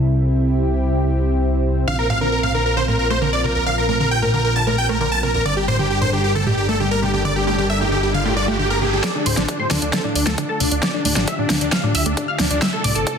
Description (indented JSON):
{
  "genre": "uplifting trance",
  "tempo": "134 BPM",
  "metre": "4/4",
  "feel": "straight",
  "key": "D minor",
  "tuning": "A4 = 440 Hz",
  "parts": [
    { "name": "lush unison pad", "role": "sustained chords", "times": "0.0-13.2 s", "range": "C3 to Bb4", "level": "-24 LUFS", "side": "equal", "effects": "chorus, sidechain pumping" },
    { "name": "fat analog bass", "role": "bass", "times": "0.0-13.0 s", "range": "G1 to D2", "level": "-22 LUFS", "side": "equal", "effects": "sidechain pumping" },
    { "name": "dense compressed supersaw", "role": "melody", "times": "1.9-13.2 s", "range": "D4 to A5", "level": "-20 LUFS", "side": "equal", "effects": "sidechain pumping, low-pass filter, ping-pong delay" },
    { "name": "tight sequenced synth", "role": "arpeggios", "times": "1.9-13.0 s", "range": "D2 to A3", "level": "-25 LUFS", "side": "right 1 dB", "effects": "chorus, sidechain pumping, ping-pong delay" },
    { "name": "riser", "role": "sound effects", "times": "6.9-9.0 s", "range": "none", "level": "-28 LUFS", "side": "right 2 dB", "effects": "none" },
    { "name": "analog pluck", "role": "second line", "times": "9.0-13.2 s", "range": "D5 to F6", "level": "-28 LUFS", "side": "left 1 dB", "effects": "chorus, vintage 12-bit sampler grit, sidechain pumping, ping-pong delay" },
    { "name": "big-room dance drum kit", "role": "drums", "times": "9.0-13.2 s", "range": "hi-hat, snare drum", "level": "-21 LUFS", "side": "equal", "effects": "overdrive, sidechain pumping on cymbals, low-pass filter on cymbals, studio reverb, low-pass filter on snare, sidechain pumping on hats, low-pass filter on hats" },
    { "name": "electronic kick drum", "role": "drums", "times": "9.0-13.2 s", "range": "none", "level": "-28 LUFS", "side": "equal", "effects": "high-pass filter on kick, studio reverb" }
  ],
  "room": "moderate lush hall reverb, RT60 1.9 s",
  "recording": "dense, heavily limited modern master",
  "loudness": "-16 LUFS",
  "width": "side -7 dB against mid",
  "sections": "0.0-9.0 A section; 9.0-13.2 B section",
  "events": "filter sweep on analog synth pad 0.0-9.0; riser 6.9-9.0; build-up 9.0-13.2; drum fill 9.0-13.2; filter sweep on supersaw synth 9.0-13.2; filter sweep on synth arpeggio sound 9.0-13.2",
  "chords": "0.0 Am/C (rootless); 1.9 Bbsus2; 5.5 Gmadd9; 9.0 Dm; 12.6 Am"
}